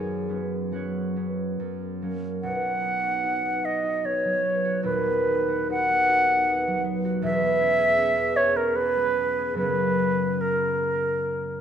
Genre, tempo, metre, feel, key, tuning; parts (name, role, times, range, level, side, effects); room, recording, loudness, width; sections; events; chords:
classical, romantic duo for flute and harp; 76 BPM; 3/4; uneven beats, rubato; B major; A4 = 441 Hz
concert harp; accompaniment; 0.0-11.6 s; D#1 to G#5; -27 LUFS; right 1 dB
concert flute; melody; 2.4-11.6 s; A#4 to F#5; -23 LUFS; equal
wet scoring stage reverb, RT60 1.7 s; dark, warm production; -22 LUFS; side -8 dB against mid
0.0-2.4 A section; 2.4-11.6 B section
0.0 F#sus4; 1.6 F#; 2.4 B; 4.9 B/D#; 7.2 C#m7/E; 9.6 F#